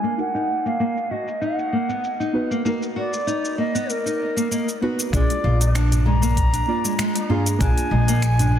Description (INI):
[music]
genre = organic downtempo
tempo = 97 BPM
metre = 4/4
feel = swing 54% on 16ths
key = Bb phrygian dominant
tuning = A4 = 440 Hz
[part]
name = mellow bansuri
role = melody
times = 0.0-8.6 s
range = A#4 to Bb5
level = -26 LUFS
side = equal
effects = digital delay, shimmer reverb
[part]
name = deep mellow chord stab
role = accompaniment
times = 0.0-8.6 s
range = Bb3 to D5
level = -28 LUFS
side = right 2 dB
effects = chorus, sidechain pumping, tape echo, shimmer reverb
[part]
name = nylon-string guitar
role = arpeggios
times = 0.0-8.6 s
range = Ab3 to F#4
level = -25 LUFS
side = equal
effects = tape echo, shimmer reverb
[part]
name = deep house drum kit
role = drums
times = 0.0-8.5 s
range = finger snaps, hi-hat, shaker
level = -30 LUFS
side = left 1 dB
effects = low-pass filter on perc, low-pass filter on hats, soft clipping on snare, low-pass filter on snare
[part]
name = upright bass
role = bass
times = 5.1-8.6 s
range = Bb1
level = -19 LUFS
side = equal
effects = none
[part]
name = electronic kick drum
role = drums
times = 5.1-7.7 s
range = none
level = -21 LUFS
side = equal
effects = none
[part]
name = tabla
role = percussion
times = 5.4-8.6 s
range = none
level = -28 LUFS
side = equal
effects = none
[sound]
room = moderate lush hall reverb, RT60 2.5 s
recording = dense, heavily limited modern master, low-pass filter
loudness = -19 LUFS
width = side -10 dB against mid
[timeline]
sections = 0.0-5.1 A section; 5.1-8.6 B section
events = filter sweep on nylon-string guitar 0.0-5.1; filter sweep on synth stab 0.0-5.1; filter sweep 0.0-5.1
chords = 0.2 Bmaj7; 5.1 Bb7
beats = | 0.18 0.80 1.42 2.04 | 2.66 3.27 3.89 4.51 | 5.13 5.75 6.37 6.99 | 7.61 8.22